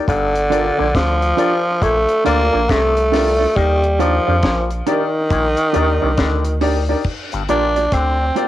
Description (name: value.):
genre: roots reggae.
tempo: 69 BPM.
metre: 4/4.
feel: swing 63% on 16ths.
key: G minor.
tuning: A4 = 439 Hz.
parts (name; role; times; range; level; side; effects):
warm baby grand piano; stabs; 0.0-8.5 s; Eb4 to D5; -22 LUFS; left 8 dB; none.
growling tenor saxophone; melody; 0.1-8.5 s; D3 to D4; -16 LUFS; equal; cassette tape, tape echo.
auto-wah clav; riff; 0.1-8.2 s; G2 to F3; -26 LUFS; left 9 dB; none.
soft dub sub bass; bass; 0.1-8.3 s; G1 to F2; -20 LUFS; equal; none.
deep reggae drum kit; drums; 0.1-8.5 s; crash cymbal, hi-hat, kick drum, rim click, snare drum; -22 LUFS; equal; cassette tape.
mellow electric guitar; accompaniment; 0.5-8.5 s; Bb3 to D5; -24 LUFS; right 10 dB; tape echo.
room: light reverb.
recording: home recording on cassette.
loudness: -14 LUFS.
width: side -13 dB against mid.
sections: 0.0-7.1 A section; 7.1-8.5 B section.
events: tenor saxophone solo 7.1-8.5.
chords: 0.1 Gm7; 3.6 Ebmaj7; 7.1 Gm7.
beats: | 0.08 0.95 1.82 2.69 | 3.56 4.44 5.31 6.18 | 7.05 7.93.